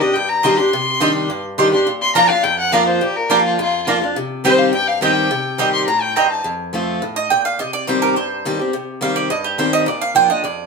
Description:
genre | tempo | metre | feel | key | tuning
bluegrass | 210 BPM | 4/4 | straight | C dorian | A4 = 440 Hz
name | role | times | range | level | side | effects
clear fiddle | second line | 0.0-6.4 s | F4 to C6 | -18 LUFS | left 3 dB | none
picked steel-string acoustic guitar | accompaniment | 0.0-10.7 s | F2 to G4 | -19 LUFS | left 1 dB | none
mandolin | stabs | 0.4-10.7 s | Bb3 to C6 | -17 LUFS | right 5 dB | none
room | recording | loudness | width
wet studio reverb, RT60 0.7 s | band playing live in one room | -15 LUFS | side -4 dB against mid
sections
0.0-6.5 A section; 6.5-10.7 A section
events
fiddle solo 0.0-6.5; mandolin solo 6.5-10.7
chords
0.0 Cmadd9; 1.9 Bb; 4.2 Cm; 6.5 F; 7.6 Cm; 9.9 Bb

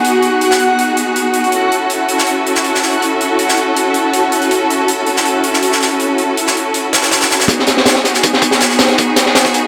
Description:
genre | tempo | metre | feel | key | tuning
drum and bass, jungle | 161 BPM | 4/4 | straight | G# phrygian | A4 = 441 Hz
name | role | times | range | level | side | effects
clear studio string section | sustained chords | 0.0-9.7 s | B3 to A4 | -17 LUFS | equal | vintage 12-bit sampler grit
huge arena drum kit | drums | 0.0-9.6 s | hi-hat, snare drum | -19 LUFS | equal | high-pass filter on hats, high-pass filter on snare, high-pass filter on room
backwards swelling texture | texture | 0.0-7.5 s | F#4 to F#5 | -20 LUFS | equal | built-in reverb
crunchy breakbeat drum kit | drums | 7.5-9.6 s | hi-hat, kick drum, snare drum | -14 LUFS | equal | high-pass filter on kick, high-pass filter on hats, high-pass filter on snare, high-pass filter on room
room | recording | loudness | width
wet plate reverb, RT60 1.7 s | none | -13 LUFS | mono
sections
0.0-7.5 A section; 7.5-9.7 B section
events
build-up 7.5-9.7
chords
0.0 G#m7; 1.5 F#m7; 7.5 G#m7

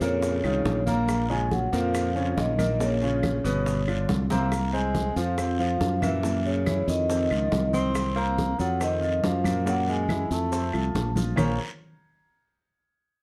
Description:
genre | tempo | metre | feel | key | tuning
Afro-Cuban jazz | 140 BPM | 4/4 | straight | Bb minor | A4 = 442 Hz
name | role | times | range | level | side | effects
vibraphone with medium mallets | melody | 0.0-11.6 s | Db5 to C6 | -32 LUFS | equal | plate reverb
breathy tenor saxophone | second line | 0.0-11.6 s | Db3 to C4 | -35 LUFS | equal | none
clear baby grand piano | accompaniment | 0.0-11.6 s | Bb2 to Db5 | -34 LUFS | equal | none
modern bright fingered electric bass | bass | 0.0-11.6 s | G1 to Gb2 | -29 LUFS | equal | none
congas | percussion | 0.0-11.5 s | none | -34 LUFS | equal | none
guiro | percussion | 0.0-11.5 s | none | -46 LUFS | equal | none
maracas | percussion | 0.0-11.5 s | none | -48 LUFS | equal | none
bongos | percussion | 0.2-11.5 s | none | -39 LUFS | equal | none
claves | percussion | 0.4-11.5 s | none | -42 LUFS | equal | none
room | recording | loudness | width
light reverb | dark, warm production | -25 LUFS | mono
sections
0.0-4.5 A section; 4.5-11.4 B section; 11.4-13.1 C section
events
drum fill 4.3, 11.2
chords
0.2 F5; 1.1 Bbm; 3.7 G7; 4.5 Fmadd11/C; 5.4 F5; 6.2 Gb7; 7.1 F5; 7.9 Ebm69/C; 8.8 F5; 9.7 Gb9; 10.5 F; 11.4 Bbm9

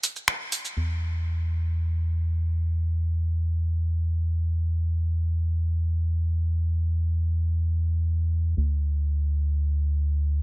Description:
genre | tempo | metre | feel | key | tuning
melodic techno | free time | none | none | unclear | A4 = 439 Hz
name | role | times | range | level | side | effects
punchy analog drum machine | drums | 0.0-0.7 s | finger snaps, hi-hat, shaker | -28 LUFS | right 1 dB | none
round analog bass | bass | 0.8-10.4 s | D2 to E2 | -23 LUFS | equal | none
room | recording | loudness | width
little or no reverb | none | -23 LUFS | side -25 dB against mid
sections
0.8-10.4 A section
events
break 0.0-0.8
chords
none

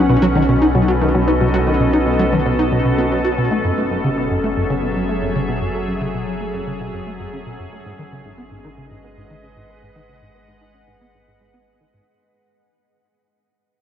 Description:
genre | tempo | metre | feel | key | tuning
ambient, sequencer-driven space music | 114 BPM | 4/4 | straight | unclear | A4 = 442 Hz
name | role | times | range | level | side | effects
evolving wavetable pad | sustained chords | 0.0-12.1 s | B2 to F#5 | -20 LUFS | left 1 dB | chorus, built-in reverb, shimmer reverb
wide unison pluck | arpeggios | 0.0-3.6 s | F#3 to B4 | -25 LUFS | left 2 dB | auto-pan, ping-pong delay
warm sub bass | bass | 0.0-12.0 s | F#1 to B1 | -25 LUFS | equal | transformer saturation
plucky analog bass | riff | 0.1-12.0 s | F#2 to F#4 | -20 LUFS | equal | lush chorus, ping-pong delay
room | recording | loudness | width
wet huge ambient reverb, RT60 8.0 s | worn, warbling old tape, cassette tape, warbly pitch drift | -15 LUFS | side -9 dB against mid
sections
0.0-12.1 A section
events
fade-out 0.0-12.1; filter sweep on analog synth bass 0.0-12.1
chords
0.0 B7; 3.6 F#m7; 7.9 G#m7

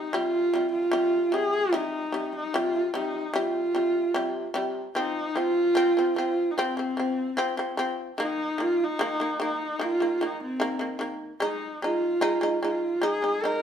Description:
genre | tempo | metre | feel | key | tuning
mongolian traditional, Mongolian folk | 74 BPM | 4/4 | straight | F minor | A4 = 438 Hz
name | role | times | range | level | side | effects
clear horsehead fiddle | melody | 0.0-13.6 s | C4 to Bb4 | -26 LUFS | right 1 dB | none
shamisen | arpeggios | 0.0-13.6 s | C3 to Eb4 | -29 LUFS | left 1 dB | none
room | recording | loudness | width
moderate studio reverb, RT60 0.9 s | band playing live in one room | -24 LUFS | side -8 dB against mid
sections
0.0-5.0 A section; 5.0-13.6 B section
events
none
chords
0.0 C5; 5.0 F5; 8.2 Eb5; 11.4 Ab5

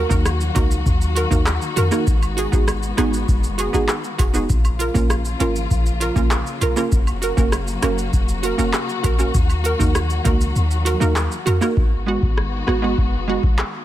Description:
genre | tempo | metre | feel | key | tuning
dancehall | 99 BPM | 4/4 | straight | G# dorian | A4 = 437 Hz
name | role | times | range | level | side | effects
warm studio string section | sustained chords | 0.0-13.8 s | C#3 to F#4 | -27 LUFS | left 4 dB | none
clean 808-style bass | bass | 0.0-13.6 s | E#1 to E#2 | -21 LUFS | equal | none
hollow square pluck | accompaniment | 0.1-13.4 s | G#3 to A#4 | -22 LUFS | right 4 dB | chorus, sidechain pumping
booming analog drum machine | drums | 0.1-13.7 s | handclaps, hi-hat, kick drum, rim click, shaker | -20 LUFS | equal | overdrive
woodblock and cabasa | percussion | 0.3-11.6 s | none | -33 LUFS | right 3 dB | none
room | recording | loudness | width
little or no reverb | none | -17 LUFS | side -13 dB against mid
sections
0.0-11.8 A section; 11.8-13.8 B section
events
kick muted 10.6-11.8; hi-hats muted 11.8-13.8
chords
0.0 D#m; 2.1 G#m7; 4.5 A#m; 6.9 F#; 9.3 D#m; 11.8 G#m7

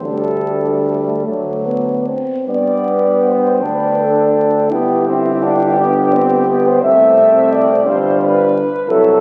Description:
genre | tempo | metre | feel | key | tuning
classical, hymn-like piece for brass band | 48-59 BPM (dotted quarters) | 6/8 | rubato | G major | A4 = 440 Hz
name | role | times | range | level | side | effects
dark cornet | melody | 0.0-9.2 s | A4 to G5 | -27 LUFS | equal | none
dark French horn section | second line | 0.0-9.2 s | D4 to E5 | -18 LUFS | equal | none
warm euphonium | accompaniment | 0.0-9.2 s | A3 to E4 | -22 LUFS | equal | none
warm trombone | accompaniment | 0.0-9.2 s | F#3 to D4 | -21 LUFS | equal | none
warm tuba | bass | 0.0-9.2 s | G1 to G2 | -24 LUFS | equal | none
room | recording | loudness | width
wet concert hall reverb, RT60 2.1 s | very old 78 rpm record, vinyl crackle | -14 LUFS | mono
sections
0.0-2.5 A section; 2.5-9.2 B section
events
none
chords
0.0 Dsus4; 1.3 D; 2.5 G; 3.6 D5; 4.7 G; 6.8 C; 7.9 G7

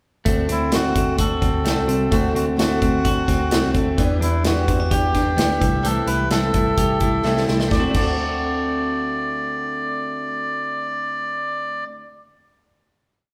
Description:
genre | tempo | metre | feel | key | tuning
jangly indie pop | 129 BPM | 4/4 | straight | D mixolydian | A4 = 445 Hz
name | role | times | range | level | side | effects
fingerpicked twelve-string acoustic guitar | accompaniment | 0.3-12.0 s | C3 to G4 | -28 LUFS | equal | none
direct-recorded clean electric guitar | arpeggios | 0.3-12.0 s | E3 to G4 | -28 LUFS | equal | none
vintage muted picked electric bass | bass | 0.3-11.8 s | C2 to E2 | -27 LUFS | equal | none
big rock drum kit | drums | 0.3-8.1 s | crash cymbal, hi-hat, kick drum, snare drum | -25 LUFS | equal | none
melodica | melody | 0.5-11.8 s | E4 to D5 | -26 LUFS | equal | none
room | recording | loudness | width
wet large studio reverb, RT60 1.5 s | band playing live in one room | -20 LUFS | mono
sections
0.3-7.7 verse; 7.7-11.4 final chord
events
drum fill 7.2-7.7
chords
0.3 D7; 4.0 Em7; 5.6 C6; 7.7 D7

